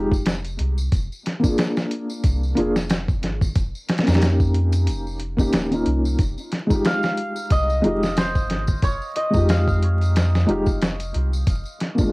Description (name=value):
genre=trip hop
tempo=91 BPM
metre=4/4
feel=swing 56% on 16ths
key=F minor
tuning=A4 = 440 Hz
part: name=felt-muted upright piano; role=accompaniment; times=0.0-12.1 s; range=Ab3 to Ab4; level=-23 LUFS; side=equal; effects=tremolo, tape echo
part: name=soft dub sub bass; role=bass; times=0.0-11.6 s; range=Eb1 to F2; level=-22 LUFS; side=equal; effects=none
part: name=dusty soul sampler-style drum kit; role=drums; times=0.1-12.1 s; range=hi-hat, kick drum, snare drum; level=-21 LUFS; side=equal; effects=small room ambience, cassette tape
part: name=tambourine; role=percussion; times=0.1-12.1 s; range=none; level=-40 LUFS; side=left 2 dB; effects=none
part: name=santur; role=melody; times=6.9-11.7 s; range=C5 to F5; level=-26 LUFS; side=equal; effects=cassette tape, dub echo
room=light reverb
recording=home recording on cassette, vinyl crackle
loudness=-18 LUFS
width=side -24 dB against mid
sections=0.0-12.1 A section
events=none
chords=0.0 Fm9; 0.9 Bb7/F; 3.6 Eb7/F; 6.2 Fm9; 11.5 Bb7/F